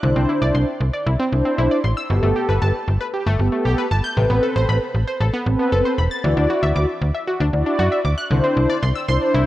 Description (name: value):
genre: pop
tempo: 116 BPM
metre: 4/4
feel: straight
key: unclear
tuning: A4 = 440 Hz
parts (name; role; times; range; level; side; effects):
- mellow synth brass; accompaniment; 0.0-9.5 s; B3 to D5; -21 LUFS; equal; chorus
- analog pluck; arpeggios; 0.0-9.4 s; B2 to A6; -24 LUFS; left 1 dB; chorus, tape echo
- slap-like FM bass; bass; 0.0-9.4 s; E1 to F#2; -18 LUFS; equal; none
room: moderate plate reverb, RT60 3.3 s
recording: worn, warbling old tape, cassette tape, warbly pitch drift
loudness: -17 LUFS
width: side -15 dB against mid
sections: 0.0-8.3 A section; 8.3-9.5 B section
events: none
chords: 0.0 Cadd9; 2.1 Gadd9; 4.2 Amadd9; 6.2 Dadd9; 8.3 Cadd9